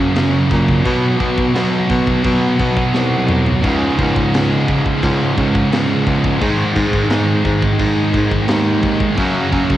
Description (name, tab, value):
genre	heavy metal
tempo	86 BPM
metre	4/4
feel	straight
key	unclear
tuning	A4 = 440 Hz
part	high-gain distorted guitar	riff	0.0-9.8 s	C#2 to F#3	-22 LUFS	left 7 dB	distortion, cassette tape
part	high-gain distorted guitar	riff	0.0-9.8 s	C#2 to B3	-17 LUFS	right 3 dB	distortion, cassette tape
part	high-gain distorted guitar	riff	0.0-9.8 s	C#2 to B3	-23 LUFS	left 1 dB	distortion, cassette tape
part	bright baritone saxophone	bass	0.0-9.8 s	B#1 to B2	-20 LUFS	equal	none
part	tight metal drum kit	drums	0.2-9.8 s	crash cymbal, kick drum, snare drum, toms	-21 LUFS	equal	cassette tape
room	little or no reverb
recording	home recording on cassette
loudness	-13 LUFS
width	side -13 dB against mid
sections	0.0-9.8 A section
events	drum fill 2.9-3.6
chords	0.0 F#; 0.9 B5; 3.6 C#5; 6.4 G#5; 9.2 F#5